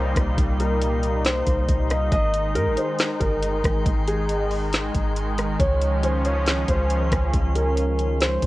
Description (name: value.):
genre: hip hop, atmospheric cloud-rap.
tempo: 138 BPM.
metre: 4/4.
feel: half-time.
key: unclear.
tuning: A4 = 437 Hz.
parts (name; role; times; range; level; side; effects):
felt-muted upright piano; melody; 0.0-8.5 s; Ab4 to Eb5; -26 LUFS; equal; low-pass filter, digital delay.
warm analog pad; sustained chords; 0.0-8.5 s; Bb2 to Eb4; -27 LUFS; left 1 dB; chorus, sidechain pumping.
soft 808-style bass; bass; 0.0-8.5 s; G1 to Ab2; -24 LUFS; equal; none.
drifting glass-harmonics texture; texture; 0.0-8.5 s; Ab3 to C6; -36 LUFS; right 2 dB; chorus, built-in reverb.
smooth R&B drum kit; drums; 0.2-8.5 s; hi-hat, kick drum, rim click, snare drum; -24 LUFS; equal; none.
room: little or no reverb.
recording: worn, warbling old tape, cassette tape, warbly pitch drift.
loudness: -20 LUFS.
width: side -17 dB against mid.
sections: 0.0-8.5 A section.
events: none.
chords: 0.0 Cm7; 2.1 Abmaj7; 5.6 Dbmaj7.